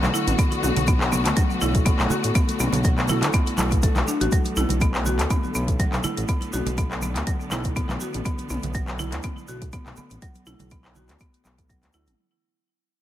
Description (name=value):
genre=afro house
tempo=122 BPM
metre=4/4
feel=swing 54% on 16ths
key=unclear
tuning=A4 = 440 Hz
part: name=warm symphonic string section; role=sustained chords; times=0.0-12.2 s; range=D3 to F#4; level=-30 LUFS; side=left 2 dB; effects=sidechain pumping
part: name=smooth synth bass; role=bass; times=0.0-12.1 s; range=A1 to D2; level=-26 LUFS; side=equal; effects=sidechain pumping
part: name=deep house drum kit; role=drums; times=0.0-12.2 s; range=handclaps, hi-hat, toms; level=-29 LUFS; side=left 1 dB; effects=none
part: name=congas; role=percussion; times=0.0-12.2 s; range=none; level=-31 LUFS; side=right 2 dB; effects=none
part: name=egg shaker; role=percussion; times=0.0-12.2 s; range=none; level=-36 LUFS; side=right 4 dB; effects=none
part: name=buzzing marimba with hard mallets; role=arpeggios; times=0.1-12.1 s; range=F#3 to A4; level=-28 LUFS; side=equal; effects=sidechain pumping, digital delay
part: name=electronic kick drum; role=drums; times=0.4-11.8 s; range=none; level=-22 LUFS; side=equal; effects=none
room=small room ambience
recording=none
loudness=-20 LUFS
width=side -12 dB against mid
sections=0.0-12.2 A section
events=drop 0.0-12.2; fade-out 4.3-12.2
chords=0.0 Asus24